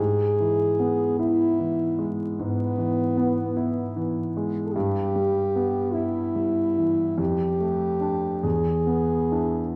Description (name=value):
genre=classical, romantic duo for French horn and grand piano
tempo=41-52 BPM (dotted quarters)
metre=12/8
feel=rubato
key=unclear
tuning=A4 = 440 Hz
part: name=warm French horn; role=melody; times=0.0-9.8 s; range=B3 to A4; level=-27 LUFS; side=equal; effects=none
part: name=warm concert grand piano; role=accompaniment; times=0.0-9.8 s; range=E2 to E4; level=-28 LUFS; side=equal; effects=none
room=wet recital hall reverb, RT60 1.5 s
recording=vinyl crackle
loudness=-24 LUFS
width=mono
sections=0.0-9.8 A section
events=none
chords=0.0 E/G#; 4.8 Em/G; 7.2 Dm/F; 8.4 E7